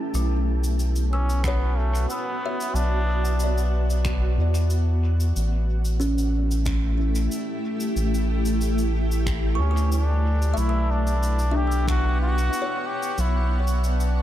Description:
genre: ambient dub.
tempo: 92 BPM.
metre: 4/4.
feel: straight.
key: B minor.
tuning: A4 = 442 Hz.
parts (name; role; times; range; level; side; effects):
granular cloud pad; sustained chords; 0.0-14.2 s; A3 to C#6; -30 LUFS; equal; built-in reverb.
kalimba; arpeggios; 0.0-14.2 s; C#4 to E6; -32 LUFS; left 2 dB; tape echo.
round analog bass; bass; 0.1-14.2 s; A1 to E2; -22 LUFS; equal; tube saturation.
cabasa and finger snaps; drums; 0.1-14.1 s; none; -37 LUFS; equal; dub echo.
trombone with straight mute; melody; 1.1-3.7, 9.6-14.2 s; A3 to G4; -30 LUFS; equal; dub echo.
electronic kick drum; drums; 1.4-12.0 s; none; -30 LUFS; equal; none.
room: light reverb, studio reverb.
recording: none.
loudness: -21 LUFS.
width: side -12 dB against mid.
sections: 0.1-14.2 A section.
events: none.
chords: 0.1 Bmadd9; 5.4 A7sus4; 10.6 Bmadd9.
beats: | 0.14 0.79 1.44 2.09 | 2.75 3.40 4.05 4.70 | 5.35 6.01 6.66 7.31 | 7.96 8.62 9.27 9.92 | 10.57 11.22 11.88 12.53 | 13.18 13.83.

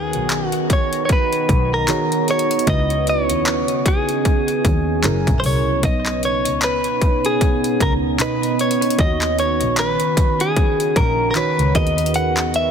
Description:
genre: contemporary R&B.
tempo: 76 BPM.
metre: 4/4.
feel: swing 58% on 16ths.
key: C# dorian.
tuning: A4 = 440 Hz.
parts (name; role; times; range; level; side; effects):
direct-recorded clean electric guitar; melody; 0.0-12.7 s; G#4 to F#5; -20 LUFS; left 1 dB; ping-pong delay.
mellow FM electric piano; accompaniment; 0.0-12.7 s; B2 to D#5; -25 LUFS; right 3 dB; chorus.
deep dark ambient pad; sustained chords; 0.0-12.7 s; C#3 to A#5; -24 LUFS; right 2 dB; chorus, built-in reverb.
muted double bass; bass; 0.0-12.7 s; F#1 to D#2; -23 LUFS; left 1 dB; none.
trap drum kit; drums; 0.1-12.7 s; handclaps, hi-hat, kick drum; -20 LUFS; equal; none.
room: light reverb, digital ambience.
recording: dense, heavily limited modern master.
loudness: -16 LUFS.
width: side -7 dB against mid.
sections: 0.0-12.7 A section.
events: none.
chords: 0.0 G#m9; 2.7 C#m11; 5.0 F#7; 5.8 Badd9; 9.0 D#m7; 11.8 G#m9.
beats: 0.30 1.09 1.88 | 2.67 3.46 4.25 5.04 | 5.83 6.62 7.41 8.20 | 8.99 9.78 10.57 11.36 | 12.14.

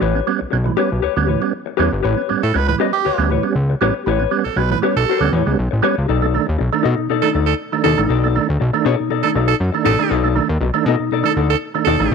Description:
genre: funk.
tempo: 119 BPM.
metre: 4/4.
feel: straight.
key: unclear.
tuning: A4 = 441 Hz.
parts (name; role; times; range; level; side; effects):
mellow electric guitar; accompaniment; 0.0-12.1 s; D#4 to D#5; -20 LUFS; left 15 dB; none.
percussive tonewheel organ; stabs; 0.0-12.1 s; A2 to D4; -21 LUFS; right 11 dB; chorus vibrato, fast rotary speaker.
fat analog bass; bass; 0.0-12.1 s; G1 to B2; -18 LUFS; equal; none.
raspy tenor saxophone; second line; 2.4-12.1 s; G4 to B4; -21 LUFS; right 14 dB; none.
room: light reverb.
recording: 1960s-style stereo with parts hard left and right.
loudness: -15 LUFS.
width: side -5 dB against mid.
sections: 0.0-6.1 A section; 6.1-12.1 B section.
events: none.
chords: 0.0 A9; 6.1 B7#9.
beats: | 0.02 0.52 1.03 1.53 | 2.04 2.55 3.05 3.56 | 4.07 4.57 5.08 5.58 | 6.08 6.59 7.09 7.59 | 8.10 8.60 9.10 9.60 | 10.11 10.61 11.11 11.61 | 12.11.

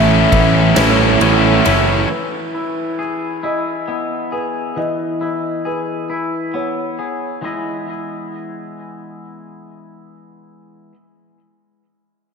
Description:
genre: post-rock.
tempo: 45 BPM (dotted quarters).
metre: 6/8.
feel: straight.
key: E major.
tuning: A4 = 439 Hz.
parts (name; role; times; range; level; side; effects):
felt-muted upright piano; arpeggios; 0.0-7.9 s; E4 to E5; -25 LUFS; right 1 dB; ping-pong delay.
twangy electric guitar; arpeggios; 0.0-11.0 s; E3 to D#5; -23 LUFS; left 4 dB; ping-pong delay.
crunchy overdriven guitar; riff; 0.0-2.1 s; A2 to E4; -16 LUFS; right 9 dB; none.
tight distorted guitar; riff; 0.0-2.1 s; A2 to E4; -17 LUFS; left 10 dB; distortion.
fuzz picked electric bass; bass; 0.0-2.0 s; F#1 to A1; -16 LUFS; left 1 dB; overdrive.
huge arena drum kit; drums; 0.3-1.9 s; kick drum, ride cymbal, snare drum; -23 LUFS; equal; none.
room: wet plate reverb, RT60 3.0 s.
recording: dreamy mix soaked in reverb.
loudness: -15 LUFS.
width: side -5 dB against mid.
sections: 0.0-2.1 A section; 2.1-7.4 B section; 7.4-10.1 C section.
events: none.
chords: 0.0 Aadd9; 2.1 Emaj7.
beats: 0.76 | 2.09 3.42 | 4.76 6.10 | 7.44 8.78.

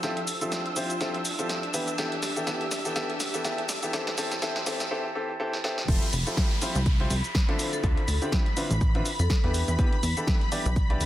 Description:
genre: piano house.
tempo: 123 BPM.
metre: 4/4.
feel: swing 57% on 16ths.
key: unclear.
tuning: A4 = 440 Hz.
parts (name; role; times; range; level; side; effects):
analog string pad; sustained chords; 0.0-11.1 s; B5 to E6; -36 LUFS; equal; ensemble chorus, sidechain pumping.
clear baby grand piano; riff; 0.0-11.0 s; D3 to D5; -31 LUFS; equal; sidechain pumping, low-pass filter, tape echo.
punchy analog drum machine; drums; 0.0-11.1 s; cabasa, crash cymbal, hi-hat, snare drum; -32 LUFS; equal; high-pass filter on hats, high-pass filter on perc, high-pass filter on snare, high-pass filter on cymbals, high-pass filter on room.
rich studio string section; texture; 0.0-4.9 s; D4 to E5; -35 LUFS; left 1 dB; sidechain pumping.
plucky analog bass; bass; 5.9-11.1 s; F1 to F2; -27 LUFS; equal; sidechain pumping.
electronic kick drum; drums; 5.9-10.9 s; none; -25 LUFS; equal; none.
downlifter; sound effects; 5.9-9.8 s; none; -37 LUFS; equal; none.
vibraphone with hard mallets; melody; 7.6-9.6 s; A4 to C5; -38 LUFS; left 4 dB; tape echo.
room: moderate lush hall reverb, RT60 1.7 s.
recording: dense, heavily limited modern master, high-pass filter.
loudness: -24 LUFS.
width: side -13 dB against mid.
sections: 0.0-5.9 A section; 5.9-11.1 B section.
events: build-up 0.0-5.9; drum fill 0.0-4.9, 5.5-5.9; filter sweep on analog synth pad 0.0-5.9; drop 5.9-11.1.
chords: 0.0 Fmaj9; 1.7 Em7; 3.9 Cadd9; 5.9 Fmaj9; 7.6 Dm9; 9.5 Em7.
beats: | 0.03 0.52 1.01 1.49 | 1.98 2.47 2.96 3.44 | 3.93 4.42 4.91 5.40 | 5.88 6.37 6.86 7.35 | 7.84 8.32 8.81 9.30 | 9.79 10.28 10.76.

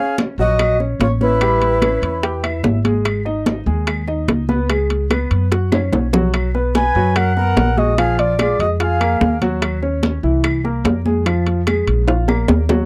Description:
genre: Afro-Cuban jazz.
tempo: 146 BPM.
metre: 4/4.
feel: straight.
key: Eb minor.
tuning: A4 = 440 Hz.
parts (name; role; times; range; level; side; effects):
breathy flute-like synth lead; melody; 0.0-2.6, 6.8-9.4 s; Cb5 to Ab5; -21 LUFS; equal; chorus.
breathy bright jazz flute; second line; 0.0-2.6, 6.7-9.4 s; Fb4 to B4; -27 LUFS; equal; none.
warm concert grand piano; accompaniment; 0.0-12.9 s; Fb3 to G5; -24 LUFS; equal; none.
bongos; percussion; 0.2-12.8 s; none; -26 LUFS; equal; none.
congas; percussion; 0.2-12.9 s; none; -24 LUFS; equal; none.
timbales; percussion; 0.2-12.8 s; none; -25 LUFS; equal; none.
upright bass; bass; 0.4-12.9 s; Ab1 to Gb2; -22 LUFS; equal; none.
claves; percussion; 0.6-12.5 s; none; -33 LUFS; equal; none.
room: light reverb.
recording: dry, close 1970s-style studio recording.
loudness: -17 LUFS.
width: mono.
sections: 0.0-12.9 A section.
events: drum fill 5.5-6.3, 12.1-12.9.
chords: 0.0 Ebm7; 1.4 A9; 3.1 Abmadd11; 4.7 Db5; 5.5 Gb5; 6.3 B5; 8.0 Bb5; 9.6 Ebm7; 10.4 C7; 11.3 Fmadd11; 12.1 Bb5.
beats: 0.18 0.59 1.00 | 1.41 1.82 2.23 2.65 | 3.06 3.47 3.88 4.29 | 4.70 5.11 5.52 5.93 | 6.34 6.75 7.16 7.57 | 7.98 8.39 8.80 9.21 | 9.62 10.03 10.44 10.85 | 11.26 11.67 12.08 12.49.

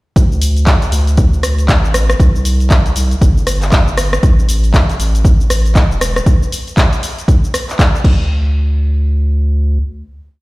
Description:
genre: afro house.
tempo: 118 BPM.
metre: 4/4.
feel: swing 60% on 16ths.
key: unclear.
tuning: A4 = 437 Hz.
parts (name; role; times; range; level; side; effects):
round analog bass; bass; 0.2-9.8 s; E1 to D2; -14 LUFS; equal; sidechain pumping.
deep house drum kit; drums; 0.2-8.2 s; crash cymbal, handclaps, hi-hat, rim click, shaker; -18 LUFS; equal; none.
electronic kick drum; drums; 0.2-8.2 s; none; -10 LUFS; equal; none.
room: little or no reverb.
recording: played on a big sound system in a bare room, stone room reverb.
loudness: -10 LUFS.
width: side -21 dB against mid.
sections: 0.2-8.3 drop; 8.3-10.4 final hit.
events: drop 0.2-8.3.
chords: none.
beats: | 0.16 0.67 1.18 1.69 | 2.20 2.71 3.21 3.72 | 4.23 4.74 5.25 5.76 | 6.26 6.77 7.28 7.79 | 8.30 8.81 9.32.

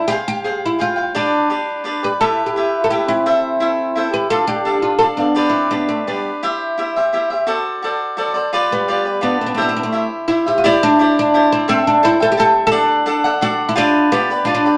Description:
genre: mexican folk, mariachi.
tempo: 171 BPM.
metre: 3/4.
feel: straight.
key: C major.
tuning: A4 = 445 Hz.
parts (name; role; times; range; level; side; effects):
oud; melody; 0.0-6.3, 8.7-14.8 s; B3 to B4; -19 LUFS; equal; none.
cavaquinho; accompaniment; 0.0-14.8 s; D4 to G5; -20 LUFS; equal; none.
dark trumpet; second line; 2.0-6.3, 8.7-10.1 s; G3 to G4; -26 LUFS; equal; none.
room: wet studio reverb, RT60 0.7 s.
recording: none.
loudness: -17 LUFS.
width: mono.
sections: 0.0-10.6 A section; 10.6-14.8 A section.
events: none.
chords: 0.1 Fmadd9; 1.1 G; 2.2 Em; 3.3 Am; 4.3 Dm; 5.4 G; 6.4 C; 7.5 D7; 8.5 G7; 9.6 C; 10.6 Cadd9; 11.7 Am7; 12.7 D; 13.8 G7.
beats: | 0.09 0.44 0.79 | 1.14 1.49 1.85 | 2.20 2.56 2.91 | 3.26 3.61 3.96 | 4.31 4.66 5.01 | 5.36 5.71 6.06 | 6.41 6.77 7.12 | 7.47 7.82 8.17 | 8.52 8.87 9.22 | 9.57 9.92 10.28 | 10.63 10.99 11.34 | 11.68 12.03 12.37 | 12.72 13.07 13.41 | 13.76 14.11 14.46.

